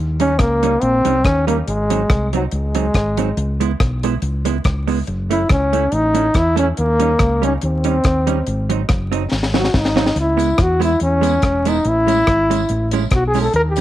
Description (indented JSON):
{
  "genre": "ska",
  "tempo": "141 BPM",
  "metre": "4/4",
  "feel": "swing 54% on 8ths",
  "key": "C# minor",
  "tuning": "A4 = 440 Hz",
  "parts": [
    { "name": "fingered electric bass", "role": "bass", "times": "0.0-13.8 s", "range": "E1 to E2", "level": "-20 LUFS", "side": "equal", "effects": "none" },
    { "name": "clear trombone", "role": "melody", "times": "0.2-13.8 s", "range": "F#3 to A#4", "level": "-17 LUFS", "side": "left 1 dB", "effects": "none" },
    { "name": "vintage hollow-body jazz guitar", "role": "accompaniment", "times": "0.2-13.8 s", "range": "F#3 to E4", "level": "-23 LUFS", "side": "right 10 dB", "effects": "none" },
    { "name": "deep reggae drum kit", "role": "drums", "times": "0.2-13.8 s", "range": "hi-hat, kick drum, rim click, snare drum", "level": "-19 LUFS", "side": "left 1 dB", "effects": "none" },
    { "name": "tambourine", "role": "percussion", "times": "10.4-13.8 s", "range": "none", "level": "-37 LUFS", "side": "left 16 dB", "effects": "none" }
  ],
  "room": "light reverb, small room ambience",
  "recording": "1960s-style stereo with parts hard left and right, vinyl crackle",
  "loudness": "-14 LUFS",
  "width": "side -13 dB against mid",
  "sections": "0.0-13.8 A section",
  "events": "trombone solo 0.0-13.8; drum fill 9.3-10.2",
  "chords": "0.0 D#7; 1.7 G#7; 3.4 C#m7; 5.1 F#m7; 6.8 D#7; 8.5 G#7; 10.2 C#m7; 11.9 Amaj7"
}